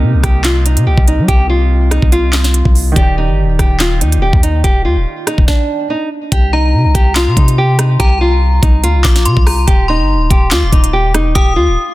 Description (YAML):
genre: hip hop, drill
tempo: 143 BPM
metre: 4/4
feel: half-time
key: C minor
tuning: A4 = 436 Hz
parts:
  - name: nylon-string guitar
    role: melody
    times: 0.0-11.9 s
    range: D4 to G4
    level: -17 LUFS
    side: equal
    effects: low-pass filter, digital delay
  - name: felt-muted upright piano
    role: accompaniment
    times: 0.0-5.9 s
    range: C3 to D5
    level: -22 LUFS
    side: right 5 dB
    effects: low-pass filter
  - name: long sustained 808-style bass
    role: bass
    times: 0.0-11.8 s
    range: Eb1 to G3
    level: -13 LUFS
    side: equal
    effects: none
  - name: drill drum kit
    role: drums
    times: 0.2-11.5 s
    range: handclaps, hi-hat, kick drum, rim click, snare drum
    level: -12 LUFS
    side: equal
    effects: none
  - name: metallic FM bell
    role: second line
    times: 6.5-11.9 s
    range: Bb5 to Eb6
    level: -20 LUFS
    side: left 2 dB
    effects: chorus, digital delay
room: digital ambience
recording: dense, heavily limited modern master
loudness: -9 LUFS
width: side -17 dB against mid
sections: 0.0-6.3 A section; 6.3-11.9 B section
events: stop 5.5-6.3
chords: 0.0 Cm7; 3.0 Ebmaj7; 6.3 Cm7; 9.7 Ebmaj7